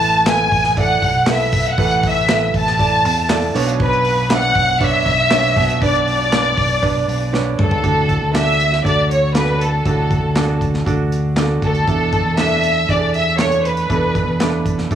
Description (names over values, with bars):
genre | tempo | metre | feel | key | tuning
piano-driven pop | 119 BPM | 4/4 | straight | unclear | A4 = 440 Hz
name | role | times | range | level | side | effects
clear studio violin section | melody | 0.0-14.7 s | A4 to A5 | -17 LUFS | equal | cassette tape, analog delay
clear concert grand piano | accompaniment | 0.0-14.9 s | A2 to E5 | -22 LUFS | right 6 dB | cassette tape
fingered electric bass | bass | 0.0-14.9 s | A1 to E2 | -20 LUFS | equal | none
modern studio drum kit | drums | 0.0-14.9 s | handclaps, hi-hat, kick drum, snare drum, toms | -21 LUFS | equal | none
room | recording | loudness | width
light reverb | home recording on cassette, studio ambience | -14 LUFS | side -9 dB against mid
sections
0.0-7.8 A section; 7.8-14.9 B section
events
drum fill 7.3-7.8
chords
0.0 Asus2; 3.5 Bmadd9; 7.8 D; 11.9 E7sus4